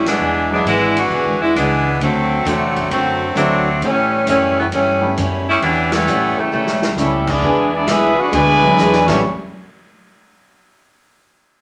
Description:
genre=jazz, big band swing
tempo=133 BPM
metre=4/4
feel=swing 67% on 8ths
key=unclear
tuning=A4 = 439 Hz
part: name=clear saxophone section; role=melody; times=0.0-6.9 s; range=C3 to F#4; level=-18 LUFS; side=equal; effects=none
part: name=clear grand piano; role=accompaniment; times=0.0-9.2 s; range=F#3 to G4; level=-25 LUFS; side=equal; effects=none
part: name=picked steel-string acoustic guitar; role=accompaniment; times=0.0-9.2 s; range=A2 to G#4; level=-24 LUFS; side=equal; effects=none
part: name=upright bass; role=bass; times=0.0-9.2 s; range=E1 to A2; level=-26 LUFS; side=equal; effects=none
part: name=swinging big-band drum kit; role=drums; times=0.1-9.1 s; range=crash cymbal, hi-hat, kick drum, ride cymbal, snare drum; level=-29 LUFS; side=equal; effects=none
part: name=clear trombone section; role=second line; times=6.5-9.2 s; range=A2 to F#4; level=-23 LUFS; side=equal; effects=none
part: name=clear trumpet section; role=melody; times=7.0-9.2 s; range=B3 to A5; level=-18 LUFS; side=equal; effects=none
room=wet studio reverb, RT60 0.7 s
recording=none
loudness=-16 LUFS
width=mono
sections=0.0-7.4 A section; 7.4-9.2 B section; 9.2-11.0 C section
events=band accent 0.0, 5.8; drum fill 6.5-7.0, 8.8-9.2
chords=0.2 E7; 2.0 D7; 3.8 A7; 7.4 E7; 9.0 A9; 9.2 N.C.

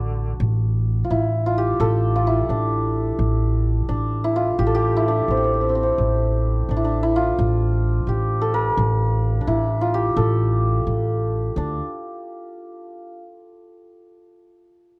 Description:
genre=Persian modal ensemble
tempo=86 BPM (dotted quarters)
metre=6/8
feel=straight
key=A dastgah shur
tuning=A4 = 440 Hz
part: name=santur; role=melody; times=0.0-13.2 s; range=C4 to Bb4+45c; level=-25 LUFS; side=equal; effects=none
part: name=upright bass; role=bass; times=0.0-11.8 s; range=A1 to D2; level=-24 LUFS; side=equal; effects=none
room=little or no reverb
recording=dry, close 1970s-style studio recording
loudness=-21 LUFS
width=mono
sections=0.4-11.6 A section; 11.6-13.0 B section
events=none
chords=none

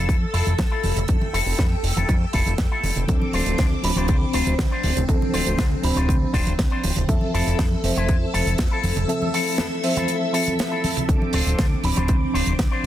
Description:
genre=nu-disco, nu disco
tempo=120 BPM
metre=4/4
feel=straight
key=unclear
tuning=A4 = 440 Hz
part: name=string machine, full ensemble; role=sustained chords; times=0.0-12.9 s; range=C4 to E6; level=-29 LUFS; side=left 1 dB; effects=phaser, ensemble chorus, sidechain pumping
part: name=electric guitar with an envelope filter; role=riff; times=0.0-12.9 s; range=D4 to C5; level=-28 LUFS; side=left 4 dB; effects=wide subtle chorus, low-pass filter, tape echo
part: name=fat analog bass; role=bass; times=0.0-12.9 s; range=D1 to F2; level=-24 LUFS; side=equal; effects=sidechain pumping
part: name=electronic kick drum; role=drums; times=0.1-12.7 s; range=none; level=-21 LUFS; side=equal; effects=none
part: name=tight funk drum kit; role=drums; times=0.1-12.7 s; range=hi-hat, snare drum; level=-28 LUFS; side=right 2 dB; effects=none
part: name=congas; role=percussion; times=0.5-12.6 s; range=none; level=-30 LUFS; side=right 1 dB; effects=none
part: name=mellow reed electric piano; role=accompaniment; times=3.1-12.9 s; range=F3 to B5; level=-26 LUFS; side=equal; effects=tremolo, tape echo
room=small room ambience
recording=dense, heavily limited modern master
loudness=-19 LUFS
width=side -12 dB against mid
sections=0.0-12.9 A section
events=none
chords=0.0 Fmaj7; 3.1 Dm7; 7.1 Fmaj7; 11.1 Dm7

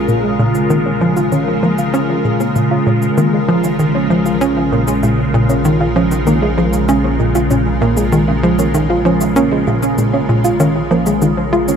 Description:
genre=ambient, sequencer-driven space music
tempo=97 BPM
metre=4/4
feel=straight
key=Bb minor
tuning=A4 = 441 Hz
part: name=evolving wavetable pad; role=sustained chords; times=0.0-11.8 s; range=Db3 to Bb4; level=-17 LUFS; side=equal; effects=ensemble chorus, built-in reverb, phaser
part: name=tight sequencer bass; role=riff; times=0.0-11.8 s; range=Bb2 to F4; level=-15 LUFS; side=equal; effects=analog chorus, tape echo
part: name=analog drone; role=bass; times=0.0-11.8 s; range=Bb1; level=-24 LUFS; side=equal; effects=chorus, tube saturation
part: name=soft round pluck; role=arpeggios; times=0.1-11.8 s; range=Ab3 to Db5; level=-19 LUFS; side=moving between left 3 dB and right 4 dB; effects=chorus, auto-pan, tape echo
part: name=cabasa and woodblock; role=percussion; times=0.1-11.8 s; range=none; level=-30 LUFS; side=right 2 dB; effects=overdrive, tape echo
room=wet huge ambient reverb, RT60 8.5 s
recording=none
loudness=-12 LUFS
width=side -7 dB against mid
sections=0.0-11.8 A section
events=fade-in on synth arpeggio sound 0.0-11.8; fade-in on drum 0.0-11.8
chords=0.0 Bbm7

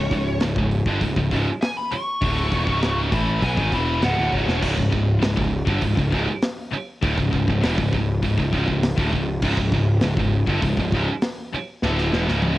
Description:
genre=heavy metal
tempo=100 BPM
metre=4/4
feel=straight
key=C# phrygian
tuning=A4 = 440 Hz
part: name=high-gain lead guitar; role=melody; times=0.0-4.6 s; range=C#5 to C#6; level=-27 LUFS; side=left 1 dB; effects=distortion, cassette tape, tape echo
part: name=heavy high-gain guitar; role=riff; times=0.0-12.6 s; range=C#2 to A3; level=-26 LUFS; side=right 5 dB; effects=distortion
part: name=scooped high-gain guitar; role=riff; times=0.0-12.6 s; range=C#2 to A3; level=-26 LUFS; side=left 3 dB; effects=distortion
part: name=fuzz picked electric bass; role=bass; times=0.0-12.6 s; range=C#1 to B1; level=-23 LUFS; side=equal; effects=overdrive
part: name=big rock drum kit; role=drums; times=0.1-12.6 s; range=crash cymbal, hi-hat, kick drum, snare drum, toms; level=-26 LUFS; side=equal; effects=cassette tape
room=little or no reverb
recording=home recording on cassette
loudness=-19 LUFS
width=side -16 dB against mid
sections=0.0-4.6 A section; 4.6-12.6 B section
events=lead electric guitar solo 0.0-4.6; drum fill 4.3, 11.8-12.6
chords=0.0 C#m; 4.6 C#5

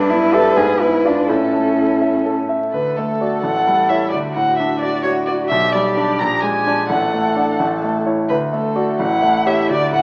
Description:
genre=quick classical-period movement for piano trio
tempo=86 BPM (dotted quarters)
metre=6/8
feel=straight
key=D major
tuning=A4 = 440 Hz
part: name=rich violin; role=melody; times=0.0-10.0 s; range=A4 to Bb5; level=-22 LUFS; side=equal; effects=none
part: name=warm cello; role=second line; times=0.0-10.0 s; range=C#4 to A4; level=-24 LUFS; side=equal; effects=none
part: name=bright concert grand piano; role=accompaniment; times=0.0-10.0 s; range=A1 to E5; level=-21 LUFS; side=equal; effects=none
room=wet recital hall reverb, RT60 1.5 s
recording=worn, warbling old tape, cassette tape, vinyl crackle, warbly pitch drift, small speaker sound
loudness=-17 LUFS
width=mono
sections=0.0-2.7 A section; 2.7-10.0 B section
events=none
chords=0.0 Em/G; 0.6 G#dim7; 1.3 A; 2.7 D; 3.4 A7; 4.1 D; 5.5 G/B; 6.2 Bb7; 6.9 D/A; 7.6 A; 8.3 D; 9.0 A7

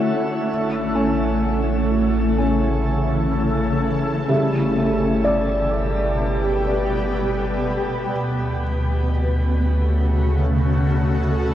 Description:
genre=ambient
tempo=63 BPM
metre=4/4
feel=straight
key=unclear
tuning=A4 = 441 Hz
part: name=shimmering ambient pad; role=sustained chords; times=0.0-11.5 s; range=B2 to B4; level=-21 LUFS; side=equal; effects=chorus, built-in reverb, phaser
part: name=felt-muted upright piano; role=arpeggios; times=0.0-9.1 s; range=C#3 to E5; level=-25 LUFS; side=right 1 dB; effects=diffuse ambient delay
part: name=warm sub bass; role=bass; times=0.5-11.5 s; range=G1 to D2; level=-23 LUFS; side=equal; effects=none
room=wet shimmer reverb, RT60 7.1 s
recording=worn, warbling old tape, cassette tape, warbly pitch drift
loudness=-18 LUFS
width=side -11 dB against mid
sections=0.5-11.5 A section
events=none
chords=0.5 A; 4.3 G; 8.1 Dmaj7

